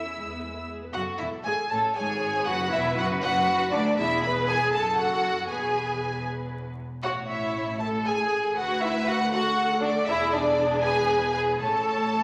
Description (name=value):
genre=quick classical-period movement for string orchestra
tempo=79 BPM (dotted quarters)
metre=6/8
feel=straight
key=A major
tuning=A4 = 441 Hz
part: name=rich studio violin section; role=melody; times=0.0-12.2 s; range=D5 to E6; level=-30 LUFS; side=equal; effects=none
part: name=rich chamber violin section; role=second line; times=0.0-12.2 s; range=D4 to E5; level=-29 LUFS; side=equal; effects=none
part: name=rich chamber viola section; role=accompaniment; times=0.0-12.2 s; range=G#3 to C#5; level=-37 LUFS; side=equal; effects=none
part: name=clear chamber double bass section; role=bass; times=0.0-12.2 s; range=E1 to E2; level=-39 LUFS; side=equal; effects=none
part: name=rich chamber cello section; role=bass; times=0.0-12.2 s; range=D2 to E4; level=-37 LUFS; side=equal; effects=none
room=wet recital hall reverb, RT60 1.4 s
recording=vinyl crackle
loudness=-26 LUFS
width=mono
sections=0.9-12.2 A section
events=none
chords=0.2 E; 0.9 A; 2.5 Bm; 4.0 E; 4.7 F#m; 5.5 E; 7.0 A; 8.6 Bm/D; 10.1 E7; 11.6 A